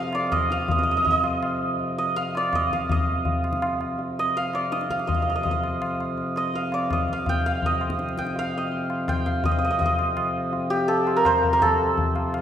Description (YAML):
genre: indian classical, Hindustani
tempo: 165 BPM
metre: 3/4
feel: straight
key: F raga khamaj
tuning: A4 = 440 Hz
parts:
  - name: santur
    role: melody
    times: 0.0-12.4 s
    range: G4 to G5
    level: -23 LUFS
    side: right 1 dB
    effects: none
  - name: pedal harmonium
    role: drone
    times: 0.0-12.4 s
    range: F2 to C3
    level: -30 LUFS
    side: left 1 dB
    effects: none
  - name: tabla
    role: percussion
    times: 0.1-12.4 s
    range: none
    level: -28 LUFS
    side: left 2 dB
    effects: none
room: wet recital hall reverb, RT60 1.6 s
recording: heard from further back in the room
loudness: -21 LUFS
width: side -9 dB against mid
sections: 0.7-9.4 A section; 9.4-12.4 B section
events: none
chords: none